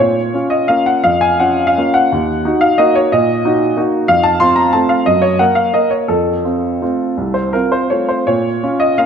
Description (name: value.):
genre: classical, piano waltz.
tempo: 157-190 BPM.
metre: 3/4.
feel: rubato.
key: Bb minor.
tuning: A4 = 440 Hz.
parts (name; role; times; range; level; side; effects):
clear upright piano; solo; 0.0-9.1 s; C2 to C6; -12 LUFS; equal; none.
room: moderate scoring stage reverb, RT60 1.6 s.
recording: nothing above 10.5 kHz.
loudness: -12 LUFS.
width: side -7 dB against mid.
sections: 0.0-9.1 A section.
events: none.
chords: 0.0 Bbm; 2.1 Ebm; 4.1 F; 5.1 Gb; 6.1 F; 8.3 Bbm.